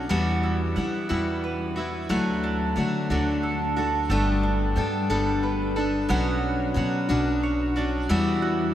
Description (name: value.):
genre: acoustic folk duo or small band.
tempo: 60 BPM (dotted quarters).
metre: 6/8.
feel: straight.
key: unclear.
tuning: A4 = 441 Hz.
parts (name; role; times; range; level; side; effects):
picked steel-string acoustic guitar; accompaniment; 0.0-8.7 s; B2 to A4; -25 LUFS; left 1 dB; none.
mandolin; arpeggios; 0.0-8.7 s; G3 to G5; -30 LUFS; right 4 dB; none.
upright bass; bass; 0.0-8.7 s; G1 to E3; -28 LUFS; equal; none.
room: wet huge ambient reverb, RT60 8.1 s.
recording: in a vast, echoing space.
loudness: -22 LUFS.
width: side -11 dB against mid.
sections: 0.0-8.7 A section.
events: none.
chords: 0.1 Emadd9; 2.1 D; 4.1 Gadd9; 6.1 Bmadd9; 8.1 Emadd9.